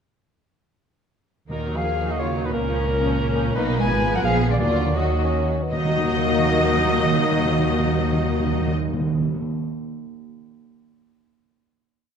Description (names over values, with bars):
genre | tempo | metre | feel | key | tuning
classical, dramatic, fast romantic movement for symphony orchestra | 155-179 BPM | 3/4 | rubato | Eb minor | A4 = 439 Hz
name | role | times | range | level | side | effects
warm symphonic violin section | melody | 1.5-8.7 s | Db4 to Eb5 | -30 LUFS | left 4 dB | none
clear clarinet | second line | 1.5-8.7 s | Bb4 to Ab5 | -30 LUFS | left 2 dB | none
clear cor anglais | second line | 1.5-8.7 s | Bb4 to Ab5 | -30 LUFS | right 2 dB | none
mellow hollow flute section | second line | 1.5-8.7 s | Bb4 to Ab5 | -31 LUFS | left 6 dB | none
warm symphonic violin section | second line | 1.5-8.7 s | Db4 to Eb5 | -32 LUFS | left 3 dB | none
rich symphonic viola section | accompaniment | 1.5-8.7 s | Eb3 to Eb4 | -30 LUFS | right 1 dB | none
warm French horn section | sustained chords | 1.5-8.7 s | Bb3 to Ab4 | -28 LUFS | left 1 dB | none
rich symphonic double bass section | bass | 1.5-8.7 s | Ab1 to Eb2 | -26 LUFS | right 2 dB | none
warm symphonic cello section | bass | 1.5-8.7 s | Bb2 to Ab3 | -28 LUFS | right 2 dB | none
timpani | percussion | 1.5-2.0, 4.6-9.5 s | Eb3 | -25 LUFS | right 1 dB | none
mellow bassoon | accompaniment | 5.0-5.7 s | Gb3 to Db4 | -30 LUFS | left 2 dB | none
room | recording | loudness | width
wet scoring stage reverb, RT60 1.9 s | none | -19 LUFS | side -7 dB against mid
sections
1.5-5.7 A section; 5.7-8.0 final chord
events
slowing down 3.0-5.7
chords
1.5 Ebm; 2.5 Bbm/Db; 3.5 Bmaj7; 3.9 Fdim/Ab; 4.2 Bb7b9; 4.6 Ebm